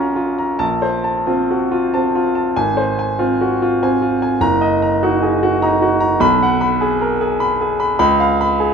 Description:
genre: classical, romantic character piece for solo piano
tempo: 89-102 BPM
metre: 3/4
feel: rubato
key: unclear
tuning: A4 = 443 Hz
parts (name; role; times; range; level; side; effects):
- bright grand piano; solo; 0.0-8.7 s; Gb1 to B5; -14 LUFS; equal; none
room: moderate recital hall reverb, RT60 1.4 s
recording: close, detailed microphones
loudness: -14 LUFS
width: side -6 dB against mid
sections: 0.0-8.7 A section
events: none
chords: 0.0 Bbm; 0.6 F/Bb; 2.6 Fm/Ab; 4.4 Ebm/Gb; 6.2 G#m7/B; 8.0 C#7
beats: | 0.60 1.27 1.93 | 2.56 3.19 3.81 | 4.41 5.01 5.62 | 6.21 6.80 7.39 | 7.98 8.59

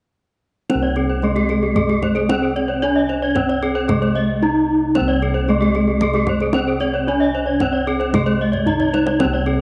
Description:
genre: Balinese gamelan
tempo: 113 BPM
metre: 4/4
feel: straight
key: C pelog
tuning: A4 = 443 Hz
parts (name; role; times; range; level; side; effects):
- gamelan-type bronze metallophone; melody; 0.7-9.6 s; Ab3 to Eb4; -21 LUFS; equal; none
- gamelan-type bronze metallophone; arpeggios; 0.7-9.6 s; Ab4 to Eb5; -26 LUFS; equal; none
- gamelan-type bossed gongs; bass; 0.7-9.6 s; C2 to Db4+35c; -25 LUFS; equal; none
- kendang; percussion; 0.7-9.5 s; none; -28 LUFS; equal; none
- gamelan-type bronze metallophone; arpeggios; 0.8-9.5 s; G4 to Eb5; -28 LUFS; equal; none
room: moderate plate reverb, RT60 3.5 s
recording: nothing above 10.4 kHz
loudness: -18 LUFS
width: mono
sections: 0.7-9.6 A section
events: drum fill 8.5-9.2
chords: none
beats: | 0.70 1.23 1.76 2.29 | 2.82 3.35 3.88 4.42 | 4.95 5.48 6.01 6.54 | 7.07 7.60 8.13 8.66 | 9.19

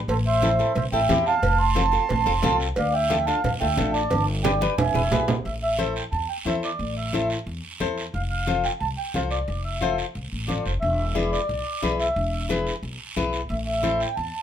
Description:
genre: latin, cumbia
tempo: 179 BPM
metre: 4/4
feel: straight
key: A minor, A harmonic minor from 5.5 s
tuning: A4 = 445 Hz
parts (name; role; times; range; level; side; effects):
- upright bass; bass; 0.0-14.3 s; E1 to F2; -28 LUFS; equal; none
- mellow accordion; melody; 0.1-14.4 s; A4 to C6; -24 LUFS; right 2 dB; none
- congas; percussion; 0.1-14.3 s; none; -30 LUFS; right 1 dB; none
- cowbell and timbales; percussion; 0.1-5.4 s; none; -30 LUFS; right 3 dB; none
- guiro; percussion; 0.1-14.4 s; none; -35 LUFS; right 5 dB; none
- flamenco guitar; accompaniment; 0.4-14.1 s; C4 to C5; -27 LUFS; left 5 dB; none
room: moderate studio reverb, RT60 0.5 s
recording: minimal, uncompressed stereo recording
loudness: -21 LUFS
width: side -9 dB against mid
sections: 0.0-5.5 A section; 5.5-14.4 B section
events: drum fill 4.1-5.5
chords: 0.1 Am; 1.4 F; 2.8 Dm; 4.1 G; 4.8 E; 5.5 Am; 8.1 F; 10.8 E7; 13.5 Am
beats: | 0.09 0.42 0.76 1.10 | 1.43 1.77 2.10 2.44 | 2.77 3.11 3.44 3.78 | 4.11 4.45 4.78 5.12 | 5.45 5.79 6.12 6.46 | 6.79 7.13 7.47 7.80 | 8.14 8.47 8.81 9.14 | 9.48 9.81 10.15 10.48 | 10.82 11.15 11.49 11.82 | 12.16 12.49 12.83 13.16 | 13.50 13.83 14.17

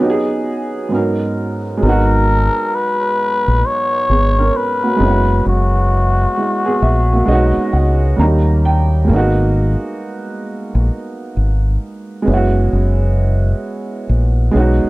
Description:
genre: hip hop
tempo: 66 BPM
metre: 4/4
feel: swing 64% on 16ths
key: G# minor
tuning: A4 = 436 Hz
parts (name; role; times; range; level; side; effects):
- trumpet with cup mute; melody; 0.0-8.2 s; F#4 to C#5; -18 LUFS; left 2 dB; low-pass filter
- dark upright piano; accompaniment; 0.0-14.9 s; G#2 to A#5; -18 LUFS; right 2 dB; cassette tape, low-pass filter
- deep dub fingered electric bass; bass; 1.8-14.9 s; F#1 to D#2; -14 LUFS; equal; none
room: light reverb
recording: dark, warm production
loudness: -13 LUFS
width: side -20 dB against mid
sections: 0.0-1.8 A section; 1.8-14.9 B section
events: break 0.0-1.8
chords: 0.0 B69; 0.9 G#m11; 5.0 F#7sus4; 7.3 B69; 8.2 D#7; 9.1 G#m9; 12.3 F#7sus4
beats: 0.90 | 1.81 2.72 3.63 4.54 | 5.45 6.36 7.27 8.18 | 9.09 9.99 10.90 11.81 | 12.72 13.63 14.54

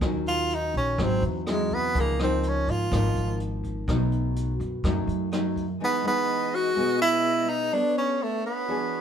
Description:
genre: bossa nova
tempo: 124 BPM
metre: 4/4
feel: straight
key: E major from 5.8 s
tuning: A4 = 440 Hz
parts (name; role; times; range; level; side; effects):
- nylon-string guitar; accompaniment; 0.0-9.0 s; Gb2 to C#5; -29 LUFS; equal; none
- upright bass; bass; 0.0-5.8 s; Ab1 to Gb2; -28 LUFS; equal; none
- jazz brush drum kit; drums; 0.0-5.7 s; hi-hat, kick drum, rim click; -32 LUFS; equal; none
- clear tenor saxophone; melody; 0.3-9.0 s; E3 to F#4; -25 LUFS; right 1 dB; none
- warm chamber string section; sustained chords; 5.8-9.0 s; E3 to D#5; -35 LUFS; left 2 dB; none
room: moderate studio reverb, RT60 0.9 s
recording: band playing live in one room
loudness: -23 LUFS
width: side -8 dB against mid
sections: 0.0-5.8 A section; 5.8-9.0 B section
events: tenor saxophone solo 0.0-5.8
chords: 0.0 Ebm9; 1.0 Abaug7; 1.9 Db69; 3.9 Cb7; 5.8 Emaj7; 7.7 Bm9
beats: | 0.02 0.50 0.98 1.46 | 1.94 2.43 2.91 3.39 | 3.87 4.35 4.83 5.32 | 5.80 6.28 6.76 7.25 | 7.73 8.21 8.69

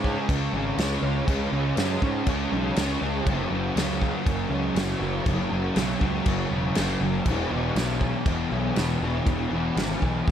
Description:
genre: rock, shoegaze and dream pop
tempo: 120 BPM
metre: 4/4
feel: straight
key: unclear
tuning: A4 = 440 Hz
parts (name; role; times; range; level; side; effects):
- fuzz guitar; riff; 0.0-10.3 s; E2 to C#4; -26 LUFS; equal; distortion, ensemble chorus
- fuzz picked electric bass; bass; 0.0-10.3 s; E1 to G#2; -29 LUFS; equal; overdrive
- loose indie drum kit; drums; 0.0-10.3 s; crash cymbal, kick drum, snare drum; -28 LUFS; equal; none
room: moderate lush hall reverb, RT60 2.0 s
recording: dreamy mix soaked in reverb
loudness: -23 LUFS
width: side -9 dB against mid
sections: 0.0-10.3 A section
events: none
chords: 0.0 C#5; 3.3 F#5; 7.3 E5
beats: 0.29 0.79 | 1.29 1.78 2.28 2.78 | 3.28 3.77 4.27 4.77 | 5.27 5.77 6.26 6.76 | 7.26 7.77 8.27 8.77 | 9.27 9.77 10.28

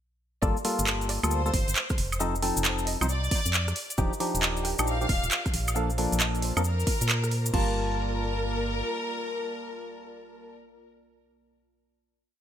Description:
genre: UK garage, two-step garage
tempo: 135 BPM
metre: 4/4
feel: swing 65% on 16ths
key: G minor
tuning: A4 = 440 Hz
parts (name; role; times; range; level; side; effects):
- dark studio violin section; melody; 0.4-10.6 s; Bb4 to G5; -34 LUFS; left 1 dB; ping-pong delay
- percussive organ stab; stabs; 0.4-10.6 s; F3 to A5; -31 LUFS; left 1 dB; chorus, ping-pong delay
- organ-like FM bass; bass; 0.4-8.8 s; Eb1 to Bb2; -29 LUFS; equal; none
- electronic kick drum; drums; 0.4-7.7 s; none; -28 LUFS; equal; none
- cabasa; percussion; 0.4-7.5 s; none; -35 LUFS; left 2 dB; none
- house drum kit; drums; 0.6-7.7 s; crash cymbal, handclaps, hi-hat, rim click, woodblock; -29 LUFS; right 2 dB; none
- airy breathy pad; sustained chords; 4.0-10.6 s; Bb3 to A5; -40 LUFS; right 2 dB; chorus, sidechain pumping
room: light reverb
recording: bright 1980s-style digital production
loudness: -25 LUFS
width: side -10 dB against mid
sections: 0.4-7.5 drop; 7.5-11.1 final chord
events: drop 0.4-7.5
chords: 0.4 Gm9; 2.2 F7; 3.8 Ebmaj9; 5.5 Bbmaj7; 7.5 Gm9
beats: | 0.42 0.87 1.31 1.76 | 2.20 2.65 3.09 3.54 | 3.98 4.42 4.87 5.31 | 5.76 6.20 6.65 7.09 | 7.54 7.98 8.43 8.87 | 9.31 9.76 10.20

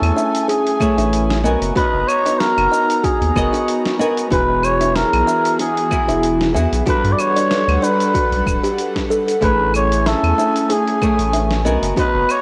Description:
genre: sunset chillout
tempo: 94 BPM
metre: 4/4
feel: swing 55% on 16ths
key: A lydian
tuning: A4 = 440 Hz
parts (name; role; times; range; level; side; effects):
- trumpet with cup mute; melody; 0.0-12.4 s; G#4 to D5; -21 LUFS; equal; cassette tape, tape echo
- flamenco guitar; accompaniment; 0.0-12.4 s; E3 to G#5; -24 LUFS; equal; cassette tape
- airy breathy pad; sustained chords; 0.0-12.4 s; E3 to A#5; -27 LUFS; equal; chorus, cassette tape
- round analog bass; bass; 0.0-12.2 s; D1 to G2; -23 LUFS; equal; tube saturation
- dusty soul sampler-style drum kit; drums; 0.0-12.4 s; cabasa, claves, hi-hat, snare drum; -29 LUFS; equal; overdrive, cassette tape
- kalimba; arpeggios; 0.2-12.1 s; F#4 to E5; -25 LUFS; equal; vintage 12-bit sampler grit, cassette tape, tape echo
- electronic kick drum; drums; 0.8-12.1 s; none; -25 LUFS; equal; overdrive, cassette tape
room: moderate spring reverb, RT60 2.0 s, digital ambience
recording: home recording on cassette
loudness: -17 LUFS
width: mono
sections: 0.0-12.4 A section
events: none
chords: 0.0 Amaj9; 1.4 Bmaj9; 4.3 Eadd9; 6.9 Gmaj9; 9.4 Amaj9; 11.7 Bmaj9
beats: 0.49 1.12 | 1.76 2.40 3.04 3.68 | 4.32 4.96 5.59 6.23 | 6.87 7.51 8.15 8.79 | 9.42 10.06 10.70 11.34 | 11.98

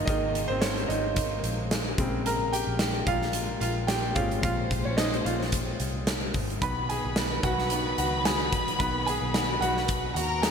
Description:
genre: piano-driven pop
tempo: 110 BPM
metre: 4/4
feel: swing 56% on 16ths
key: unclear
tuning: A4 = 439 Hz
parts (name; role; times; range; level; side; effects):
- bright concert grand piano; accompaniment; 0.0-10.5 s; Db3 to B5; -30 LUFS; right 1 dB; none
- warm studio string section; sustained chords; 0.0-10.5 s; Bb2 to C5; -36 LUFS; left 2 dB; none
- vintage muted fingered electric bass; bass; 0.0-10.5 s; Ab1 to D#2; -33 LUFS; left 1 dB; none
- huge arena drum kit; drums; 0.1-10.5 s; hi-hat, kick drum, snare drum; -29 LUFS; equal; gated reverb
- rich studio violin section; second line; 6.6-10.5 s; Bb4 to B5; -30 LUFS; equal; digital delay
room: moderate lush hall reverb, RT60 1.9 s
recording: bright 1980s-style digital production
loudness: -25 LUFS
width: side -6 dB against mid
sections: 0.0-10.5 A section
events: grand piano solo 0.0-10.5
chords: 0.0 Absus2; 2.0 Bbm7; 6.6 B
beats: | 0.07 0.62 1.16 1.71 | 2.25 2.80 3.34 3.89 | 4.43 4.98 5.53 6.07 | 6.62 7.16 7.71 8.25 | 8.80 9.34 9.89 10.44

